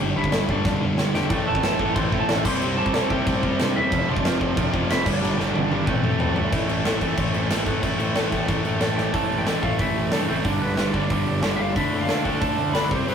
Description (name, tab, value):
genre	punk rock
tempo	183 BPM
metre	4/4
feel	straight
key	A minor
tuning	A4 = 440 Hz
part	lightly driven lead guitar	melody	0.0-6.3, 9.0-13.1 s	B3 to C6	-28 LUFS	right 1 dB	none
part	heavy high-gain guitar	riff	0.0-13.1 s	G2 to F4	-33 LUFS	right 1 dB	distortion
part	overdriven semi-hollow guitar	riff	0.0-13.1 s	F2 to D4	-25 LUFS	left 2 dB	none
part	growling picked electric bass	bass	0.0-13.1 s	E1 to A2	-33 LUFS	equal	none
part	big rock drum kit	drums	0.0-13.1 s	crash cymbal, hi-hat, kick drum, snare drum, toms	-24 LUFS	equal	none
part	overdriven electric guitar	riff	1.3-13.1 s	F2 to D4	-29 LUFS	right 6 dB	none
room	moderate booth ambience, RT60 0.2 s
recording	rough rehearsal-room recording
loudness	-20 LUFS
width	side -7 dB against mid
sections	0.0-6.5 A section; 6.5-9.1 B section; 9.1-13.1 C section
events	drum fill 0.7-1.3, 5.2-6.5, 9.0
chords	0.0 G; 1.3 Am; 2.5 C; 3.9 F; 5.1 G; 5.9 Am; 10.5 G; 11.8 Dm